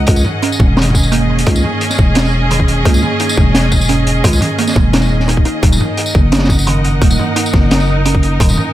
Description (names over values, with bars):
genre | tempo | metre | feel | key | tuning
half-time drum and bass | 173 BPM | 4/4 | half-time | unclear | A4 = 440 Hz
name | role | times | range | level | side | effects
warm studio string section | sustained chords | 0.0-8.7 s | Db4 to Ab5 | -19 LUFS | equal | vintage 12-bit sampler grit, sidechain pumping
growling 808-style bass | bass | 0.0-8.6 s | Eb1 to Db2 | -14 LUFS | equal | none
crunchy breakbeat drum kit | drums | 0.1-8.6 s | hi-hat, snare drum, tambourine, toms | -17 LUFS | equal | none
electronic kick drum | drums | 0.1-8.5 s | none | -13 LUFS | equal | none
kalimba | arpeggios | 0.4-8.7 s | Eb3 to Eb4 | -19 LUFS | right 4 dB | digital delay
room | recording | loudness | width
small room ambience | none | -10 LUFS | side -13 dB against mid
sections
0.0-8.7 A section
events
none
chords
0.1 Dbm; 5.6 Ebm